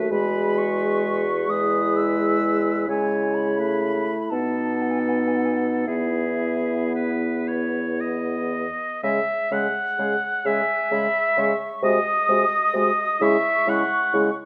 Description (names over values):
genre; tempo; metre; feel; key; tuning
classical, slow romantic movement for wind quintet; 37-44 BPM (dotted quarters); 6/8; rubato; E major, C# minor from 9.0 s; A4 = 440 Hz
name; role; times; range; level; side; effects
clear oboe; second line; 0.0-14.3 s; G#4 to F#5; -28 LUFS; equal; none
clear French horn; accompaniment; 0.0-14.3 s; G#3 to B3; -30 LUFS; equal; none
dark clarinet; accompaniment; 0.0-14.3 s; D#4 to G#4; -31 LUFS; equal; none
mellow bassoon; bass; 0.0-14.3 s; D#2 to C#3; -28 LUFS; equal; none
mellow silver concert flute; melody; 0.1-14.3 s; E5 to E6; -30 LUFS; equal; none
room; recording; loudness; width
moderate recital hall reverb, RT60 1.5 s; none; -22 LUFS; mono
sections
0.0-9.0 A section; 9.0-14.5 B section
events
none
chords
0.1 E; 2.9 C#m; 4.3 B7; 5.9 E; 9.0 C#m; 11.8 G#7/B#; 13.2 C#m